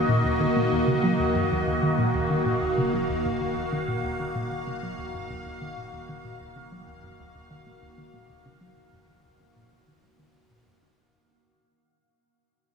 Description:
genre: ambient, sequencer-driven space music.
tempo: 95 BPM.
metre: 4/4.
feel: straight.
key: Eb minor.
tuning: A4 = 445 Hz.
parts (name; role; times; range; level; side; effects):
evolving wavetable pad; sustained chords; 0.0-11.0 s; Eb3 to F5; -26 LUFS; equal; phaser, built-in reverb.
plucky analog bass; riff; 0.0-10.9 s; Eb2 to Gb3; -28 LUFS; equal; tape echo.
warm sub bass; bass; 0.0-11.0 s; Eb1; -49 LUFS; equal; none.
room: wet huge ambient reverb, RT60 7.7 s.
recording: studio reverb.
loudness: -23 LUFS.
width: side -5 dB against mid.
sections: 0.0-11.0 A section.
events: fade-out 0.0-11.0.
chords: 0.0 Ebm.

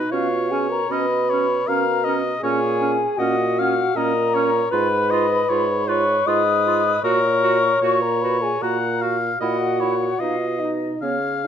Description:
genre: classical, slow romantic movement for wind quintet.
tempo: 78 BPM.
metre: 3/4.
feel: uneven beats, rubato.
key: F# major.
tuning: A4 = 440 Hz.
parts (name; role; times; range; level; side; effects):
mellow concert flute; melody; 0.0-11.5 s; C#5 to D#6; -25 LUFS; left 7 dB; none.
clear oboe; second line; 0.0-11.5 s; A#4 to F#5; -24 LUFS; left 3 dB; none.
mellow French horn; accompaniment; 0.0-11.5 s; C#4 to D#5; -22 LUFS; equal; none.
dark bassoon; bass; 0.0-11.5 s; Ab2 to C#3; -25 LUFS; right 3 dB; none.
clear clarinet; accompaniment; 0.1-11.2 s; B3 to F#4; -27 LUFS; right 11 dB; none.
room: moderate recital hall reverb, RT60 1.4 s.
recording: none.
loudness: -18 LUFS.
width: side -8 dB against mid.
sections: 0.0-11.5 A section.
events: none.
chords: 0.1 Bmaj9#11; 2.4 F#/A#; 4.7 Fdim/Ab; 7.0 F#/A#; 9.4 F#7/A#; 10.2 B.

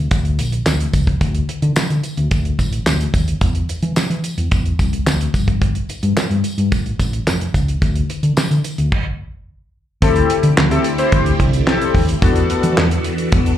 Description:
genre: early-eighties boogie funk.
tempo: 109 BPM.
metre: 4/4.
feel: straight.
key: unclear.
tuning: A4 = 445 Hz.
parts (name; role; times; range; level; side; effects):
hollow-body short-scale fingered electric bass; bass; 0.0-13.5 s; F1 to E3; -17 LUFS; equal; none.
damped 70s drum kit; drums; 0.1-13.6 s; crash cymbal, handclaps, hi-hat, kick drum, snare drum; -18 LUFS; equal; none.
tambourine; percussion; 0.1-8.8 s; none; -33 LUFS; left 2 dB; none.
chorused polysynth; accompaniment; 10.0-12.8 s; B3 to C5; -18 LUFS; left 4 dB; slapback echo.
phased string machine; sustained chords; 10.0-13.6 s; D3 to A4; -21 LUFS; equal; ensemble chorus, phaser.
room: light reverb.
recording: live gig heard through the venue's PA, club reverb.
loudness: -15 LUFS.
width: side -11 dB against mid.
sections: 0.0-10.0 A section; 10.0-13.6 B section.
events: stop 8.9-10.0.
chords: 0.0 N.C.; 1.2 D5; 3.4 N.C.; 5.3 Gsus2; 7.8 N.C.; 10.0 D9sus4; 12.2 E9sus4.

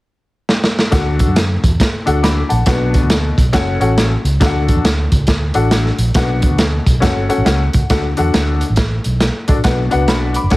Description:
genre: uptempo 1960s-style soul.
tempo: 138 BPM.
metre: 4/4.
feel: swing 64% on 8ths.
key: D major.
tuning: A4 = 440 Hz.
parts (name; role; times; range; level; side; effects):
crunchy breakbeat drum kit; drums; 0.5-10.6 s; hi-hat, kick drum, snare drum; -15 LUFS; equal; none.
clear upright piano; accompaniment; 0.9-10.6 s; B2 to D6; -18 LUFS; left 3 dB; plate reverb.
vintage muted fingered electric bass; bass; 0.9-10.6 s; F#1 to F#2; -17 LUFS; equal; none.
room: light reverb.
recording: heavily compressed radio sound, multiband compression.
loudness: -12 LUFS.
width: side -19 dB against mid.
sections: 0.9-7.9 A section; 7.9-10.6 B section.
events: drum fill 0.5-0.9; upright piano fill 7.2-7.9.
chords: 0.0 N.C.; 0.9 D; 2.7 Bm; 3.5 F#m; 4.4 D; 6.2 Bm; 7.0 F#m; 7.9 D; 9.6 Bm.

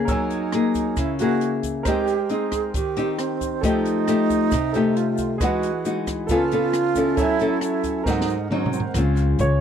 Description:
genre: bossa nova.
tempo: 135 BPM.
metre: 4/4.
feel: straight.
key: unclear.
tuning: A4 = 440 Hz.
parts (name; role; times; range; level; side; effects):
clear baby grand piano; accompaniment; 0.0-9.6 s; G#4 to E6; -29 LUFS; right 2 dB; none.
nylon-string guitar; accompaniment; 0.0-9.6 s; G#2 to A4; -22 LUFS; left 4 dB; none.
upright bass; bass; 0.0-9.6 s; C#2 to G#2; -19 LUFS; equal; none.
breathy bright wooden-headed alto flute; second line; 0.1-8.9 s; B#3 to G#4; -25 LUFS; right 11 dB; none.
open jazz drum kit; drums; 0.1-9.5 s; hi-hat, kick drum, rim click, snare drum, toms; -28 LUFS; equal; none.
tube shaker; percussion; 0.1-9.6 s; none; -42 LUFS; left 19 dB; none.
room: small room ambience.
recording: dry, close 1970s-style studio recording.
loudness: -19 LUFS.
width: side -8 dB against mid.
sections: 0.0-9.0 A section.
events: drum fill 8.1-9.0.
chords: 0.1 F#9; 1.9 G#maj7; 3.6 F9; 5.4 Emaj9; 6.3 C#7b13; 7.2 F#m7; 8.1 G#7; 9.0 Dbmaj7.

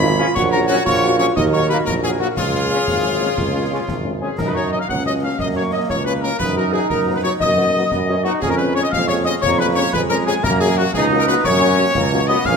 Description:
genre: military-style march for wind band.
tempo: 119 BPM (dotted quarters).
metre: 6/8.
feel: straight.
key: F# major.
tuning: A4 = 440 Hz.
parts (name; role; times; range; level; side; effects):
bright trumpet section; melody; 0.0-12.6 s; E#4 to B5; -23 LUFS; left 1 dB; none.
mellow wooden piccolo; second line; 0.0-12.6 s; E#5 to B6; -25 LUFS; left 4 dB; none.
warm euphonium; second line; 0.0-4.1 s; D#4 to G#4; -23 LUFS; right 3 dB; none.
warm woodwind section; second line; 0.0-12.5 s; E#4 to F#5; -23 LUFS; left 3 dB; none.
dark French horn section; accompaniment; 0.0-12.4 s; F#3 to F#4; -27 LUFS; left 6 dB; none.
warm tuba; bass; 0.0-12.6 s; G#1 to F#2; -21 LUFS; right 4 dB; none.
warm trombone section; sustained chords; 0.2-12.6 s; E#3 to D#4; -24 LUFS; right 1 dB; none.
concert snare drum, clash cymbals and concert bass drum; drums; 0.4-12.6 s; none; -27 LUFS; left 1 dB; none.
room: moderate scoring stage reverb, RT60 2.2 s.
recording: none.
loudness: -15 LUFS.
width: side -5 dB against mid.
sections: 0.0-4.4 A section; 4.4-12.6 B section.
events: none.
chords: 0.3 F#/A#; 1.4 D#m; 2.4 C#; 4.4 F#; 6.4 B/F#; 8.4 C#/E#; 10.4 F#.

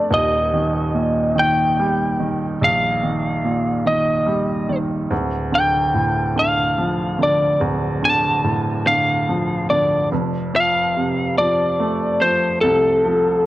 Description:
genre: pop.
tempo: 48 BPM (dotted quarters).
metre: 6/8.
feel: straight.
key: unclear.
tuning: A4 = 440 Hz.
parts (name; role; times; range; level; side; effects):
lightly driven lead guitar; melody; 0.0-13.5 s; A4 to A5; -18 LUFS; left 1 dB; none.
clear baby grand piano; accompaniment; 0.0-13.5 s; D1 to D4; -20 LUFS; right 1 dB; none.
room: light reverb, small room reverb.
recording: worn, warbling old tape, cassette tape, warbly pitch drift.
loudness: -16 LUFS.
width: side -15 dB against mid.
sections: 0.0-13.5 A section.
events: none.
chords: 0.1 Eb; 5.1 Dm; 10.1 F.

